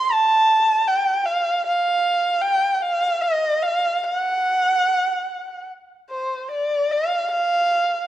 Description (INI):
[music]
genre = celtic folk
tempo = 70-79 BPM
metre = 3/4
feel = rubato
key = unclear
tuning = A4 = 440 Hz
[part]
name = warm erhu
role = solo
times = 0.0-8.1 s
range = C5 to C6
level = -18 LUFS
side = right 1 dB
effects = none
[sound]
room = moderate scoring stage reverb, RT60 1.7 s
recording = dark, warm production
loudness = -18 LUFS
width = side -13 dB against mid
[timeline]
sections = 0.0-6.5 A section; 6.5-8.1 B section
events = none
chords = none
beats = 0.10 0.87 | 1.65 2.42 3.21 | 4.02 4.83 5.66 | 6.49 7.29